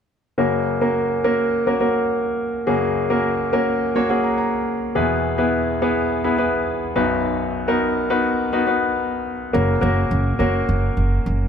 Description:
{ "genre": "piano-driven pop", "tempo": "105 BPM", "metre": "4/4", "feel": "straight", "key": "F# major", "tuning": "A4 = 440 Hz", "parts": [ { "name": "clear concert grand piano", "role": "accompaniment", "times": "0.4-11.5 s", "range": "B1 to A#5", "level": "-18 LUFS", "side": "left 1 dB", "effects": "none" }, { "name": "upright bass", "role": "bass", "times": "9.5-11.5 s", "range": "F#1", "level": "-19 LUFS", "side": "right 1 dB", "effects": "none" } ], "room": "light reverb", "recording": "none", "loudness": "-18 LUFS", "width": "side -7 dB against mid", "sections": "0.4-9.5 A section; 9.5-11.5 B section", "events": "grand piano fill 3.8-5.0", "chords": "0.4 F#; 5.0 E; 7.0 B; 9.5 F#", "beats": "| 0.38 0.95 1.52 2.09 | 2.67 3.24 3.81 4.38 | 4.96 5.53 6.10 6.67 | 7.25 7.82 8.39 8.96 | 9.54 10.11 10.68 11.25" }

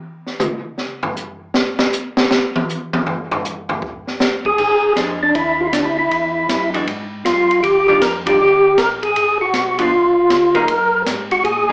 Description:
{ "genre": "soul jazz organ trio", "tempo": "157 BPM", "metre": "4/4", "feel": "swing 66% on 8ths", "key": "unclear", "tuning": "A4 = 441 Hz", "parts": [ { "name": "open jazz drum kit", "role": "drums", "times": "0.3-11.6 s", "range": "crash cymbal, hi-hat, kick drum, ride cymbal, snare drum, toms", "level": "-20 LUFS", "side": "equal", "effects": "slapback echo" }, { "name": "percussive tonewheel organ", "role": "melody", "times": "4.5-11.7 s", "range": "D4 to Bb4", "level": "-13 LUFS", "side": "equal", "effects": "slow rotary speaker, overdrive, chorus vibrato, slapback echo" }, { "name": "mellow tonewheel organ", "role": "bass", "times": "4.6-11.7 s", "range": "Ab1 to Bb2", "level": "-33 LUFS", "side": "equal", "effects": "chorus vibrato, slow rotary speaker" }, { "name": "archtop guitar, miked and amplified", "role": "accompaniment", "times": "5.0-11.7 s", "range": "Eb3 to Ab4", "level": "-21 LUFS", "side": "equal", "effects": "slapback echo" } ], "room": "wet club reverb, RT60 0.5 s", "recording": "live gig heard through the venue's PA, club reverb, small speaker sound", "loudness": "-14 LUFS", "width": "side -31 dB against mid", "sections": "0.0-4.6 A section; 4.6-11.7 B section", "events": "tonewheel organ solo 0.0-4.6; drum solo 0.0-4.6; band accent 8.2", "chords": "0.0 N.C.; 4.6 Bb7; 6.1 Eadd9; 7.6 Ebmaj9; 9.2 Abm7; 9.9 Db; 10.7 Gbadd9", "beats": "| 0.02 0.40 0.78 1.16 | 1.54 1.92 2.30 2.68 | 3.06 3.44 3.82 4.20 | 4.58 4.96 5.34 5.72 | 6.10 6.49 6.87 7.25 | 7.63 8.01 8.39 8.77 | 9.15 9.54 9.92 10.30 | 10.68 11.06 11.44" }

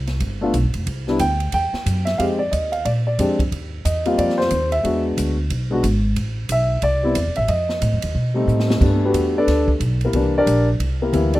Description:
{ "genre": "jazz piano trio", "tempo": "181 BPM", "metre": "4/4", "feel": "swing 62% on 8ths", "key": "unclear", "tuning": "A4 = 439 Hz", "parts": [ { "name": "upright bass", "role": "bass", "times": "0.0-11.4 s", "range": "F1 to B2", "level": "-21 LUFS", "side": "equal", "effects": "none" }, { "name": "swinging big-band drum kit", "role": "drums", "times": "0.1-11.4 s", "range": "crash cymbal, hi-hat, kick drum, ride cymbal, snare drum", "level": "-28 LUFS", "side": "right 1 dB", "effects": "none" }, { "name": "warm grand piano", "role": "melody", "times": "0.4-11.4 s", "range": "E3 to G5", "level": "-19 LUFS", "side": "left 1 dB", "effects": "none" } ], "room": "small room ambience", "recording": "rough home demo mix", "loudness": "-17 LUFS", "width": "side -16 dB against mid", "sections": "0.0-8.8 A section; 8.8-11.4 B section", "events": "drum fill 8.5-8.8; grand piano solo 8.8-11.4", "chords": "0.2 G7; 0.9 C; 2.2 Fm7; 2.9 Bb7; 3.5 Eb6; 4.8 E7; 6.2 Am; 7.5 F9; 8.8 Gmaj9; 10.1 C9", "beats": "0.21 0.54 | 0.87 1.20 1.53 1.87 | 2.20 2.53 2.86 3.19 | 3.52 3.85 4.18 4.51 | 4.84 5.17 5.50 5.83 | 6.17 6.50 6.83 7.16 | 7.49 7.82 8.15 8.48 | 8.81 9.14 9.47 9.80 | 10.14 10.47 10.80 11.13" }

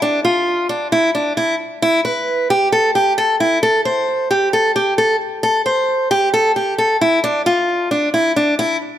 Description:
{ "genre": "hip hop", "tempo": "133 BPM", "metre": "4/4", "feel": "half-time", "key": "A minor", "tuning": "A4 = 440 Hz", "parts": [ { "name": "picked steel-string acoustic guitar", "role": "solo", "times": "0.0-8.8 s", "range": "D4 to C5", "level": "-14 LUFS", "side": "equal", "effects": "none" } ], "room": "light reverb, small room ambience", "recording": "none", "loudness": "-14 LUFS", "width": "side -11 dB against mid", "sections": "0.0-9.0 A section", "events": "none", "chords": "none", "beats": "| 0.02 0.47 0.92 1.37 | 1.82 2.27 2.73 3.18 | 3.63 4.08 4.53 4.98 | 5.43 5.88 6.33 6.79 | 7.24 7.69 8.14 8.59" }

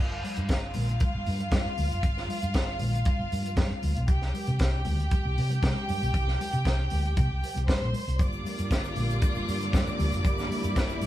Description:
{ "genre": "disco", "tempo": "117 BPM", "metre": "4/4", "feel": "straight", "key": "G dorian", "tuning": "A4 = 439 Hz", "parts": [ { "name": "clear studio violin section", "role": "second line", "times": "0.0-11.1 s", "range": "F4 to D6", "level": "-34 LUFS", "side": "equal", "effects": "none" }, { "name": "hollow-body short-scale fingered electric bass", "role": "bass", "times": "0.0-11.1 s", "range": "F#1 to C3", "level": "-29 LUFS", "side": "equal", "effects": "none" }, { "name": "tight funk drum kit", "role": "drums", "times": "0.2-11.1 s", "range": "hi-hat, kick drum, snare drum", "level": "-28 LUFS", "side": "equal", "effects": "none" }, { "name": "congas", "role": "percussion", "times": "0.2-11.1 s", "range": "none", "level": "-38 LUFS", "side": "left 2 dB", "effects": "none" }, { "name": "rich studio string section", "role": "sustained chords", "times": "8.2-11.1 s", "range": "D3 to F4", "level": "-33 LUFS", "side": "equal", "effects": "none" }, { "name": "egg shaker", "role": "percussion", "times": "8.2-11.1 s", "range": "none", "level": "-53 LUFS", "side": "right 4 dB", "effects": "none" } ], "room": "moderate studio reverb, RT60 0.6 s", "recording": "band playing live in one room, lossy compression artefacts", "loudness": "-25 LUFS", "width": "side -14 dB against mid", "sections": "0.0-11.1 A section", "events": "none", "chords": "0.0 G7(no3); 4.1 C5; 8.2 Gm7", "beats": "0.49 1.01 1.52 | 2.03 2.55 3.06 3.57 | 4.09 4.60 5.11 5.62 | 6.14 6.65 7.16 7.68 | 8.19 8.70 9.22 9.73 | 10.24 10.76" }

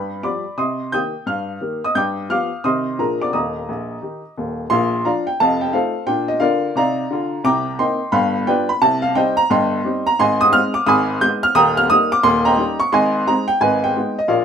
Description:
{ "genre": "jazz, stride piano", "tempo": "175 BPM", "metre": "4/4", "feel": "swing 64% on 8ths", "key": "Eb major, Bb major from 4.7 s", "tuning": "A4 = 440 Hz", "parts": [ { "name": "warm upright piano", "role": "solo", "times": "0.0-14.4 s", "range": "Eb1 to G6", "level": "-16 LUFS", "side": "equal", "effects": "none" } ], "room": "light reverb", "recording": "minimal, uncompressed stereo recording", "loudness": "-16 LUFS", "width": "side -7 dB against mid", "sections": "0.0-4.7 A section; 4.7-14.4 B section", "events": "none", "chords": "0.0 G7; 0.6 Cm7; 2.0 G7; 2.6 Cm; 3.0 Bb7; 3.3 Eb; 4.7 Bb; 5.4 F7; 6.1 Bb; 7.4 Cm7; 8.1 G7; 8.8 Cm; 10.2 Ab; 10.9 Abm; 11.6 Eb; 12.2 Eb7; 12.9 Ab; 13.6 Abm", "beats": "0.24 | 0.58 0.93 1.27 1.61 | 1.96 2.30 2.65 2.99 | 3.33 3.68 4.02 4.37 | 4.71 5.05 5.39 5.74 | 6.08 6.42 6.76 7.11 | 7.45 7.79 8.13 8.48 | 8.82 9.16 9.50 9.85 | 10.19 10.53 10.87 11.21 | 11.56 11.90 12.24 12.58 | 12.93 13.27 13.61 13.95 | 14.29" }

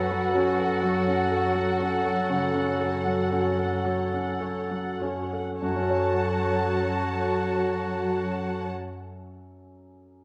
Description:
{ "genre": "classical, romantic movement for piano and orchestra", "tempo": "32-42 BPM (dotted quarters)", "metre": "12/8", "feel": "rubato", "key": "F# minor", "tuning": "A4 = 439 Hz", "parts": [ { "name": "muted symphonic violin section", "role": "melody", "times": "0.0-8.7 s", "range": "F#5 to A5", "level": "-39 LUFS", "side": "equal", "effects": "none" }, { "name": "warm concert grand piano", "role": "melody", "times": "0.0-10.2 s", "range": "F#2 to C#5", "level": "-32 LUFS", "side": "equal", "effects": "none" }, { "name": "clear oboe", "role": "second line", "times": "0.0-8.7 s", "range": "F#4 to A4", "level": "-37 LUFS", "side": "equal", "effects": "none" }, { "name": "mellow silver concert flute", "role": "second line", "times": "0.0-8.7 s", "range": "F#5 to A5", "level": "-36 LUFS", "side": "equal", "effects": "none" }, { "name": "muted symphonic violin section", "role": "second line", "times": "0.0-8.7 s", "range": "F#4 to F#5", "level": "-40 LUFS", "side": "equal", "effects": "none" }, { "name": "warm clarinet", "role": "second line", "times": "0.0-8.7 s", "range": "F#4", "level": "-37 LUFS", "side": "equal", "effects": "none" }, { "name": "dark bassoon", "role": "accompaniment", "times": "0.0-8.7 s", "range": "F#3", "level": "-36 LUFS", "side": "equal", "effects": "none" }, { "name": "muted symphonic viola section", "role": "accompaniment", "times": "0.0-8.7 s", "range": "F#4 to F#5", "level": "-37 LUFS", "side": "equal", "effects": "none" }, { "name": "muted symphonic cello section", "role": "bass", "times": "0.0-8.7 s", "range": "F#3", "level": "-37 LUFS", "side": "equal", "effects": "none" }, { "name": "muted symphonic double bass section", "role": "bass", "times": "0.0-8.7 s", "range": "F#2", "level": "-37 LUFS", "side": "equal", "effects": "none" }, { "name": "mellow French horn section", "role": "sustained chords", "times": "0.3-8.7 s", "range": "F#4 to A4", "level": "-35 LUFS", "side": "equal", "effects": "none" } ], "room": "wet recital hall reverb, RT60 1.6 s", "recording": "none", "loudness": "-26 LUFS", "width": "mono", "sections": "0.0-5.6 A section; 5.6-10.2 B section", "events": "slowing down 0.0-5.6", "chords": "0.0 F#m", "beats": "0.82 2.28 3.84 | 5.62 7.34 9.06" }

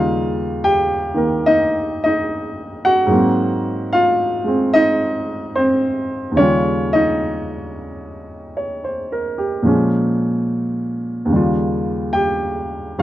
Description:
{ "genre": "solo jazz", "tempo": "73 BPM", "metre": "4/4", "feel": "swing 68% on 8ths, rubato", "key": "Eb mixolydian", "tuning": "A4 = 445 Hz", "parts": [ { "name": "warm baby grand piano", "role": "solo", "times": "0.0-13.0 s", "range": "Eb2 to G5", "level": "-16 LUFS", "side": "equal", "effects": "none" } ], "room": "small room ambience", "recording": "dry, close 1970s-style studio recording", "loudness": "-16 LUFS", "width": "side -14 dB against mid", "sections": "0.0-13.0 A section", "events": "none", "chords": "0.0 Eb9; 3.1 Ab9; 6.4 Eb9; 9.6 Bbm7; 11.3 Eb9", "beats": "0.61 1.44 2.27 | 3.10 3.91 4.73 5.55 | 6.37 7.19 8.01 8.83 | 9.65 10.48 11.31 12.14 | 12.98" }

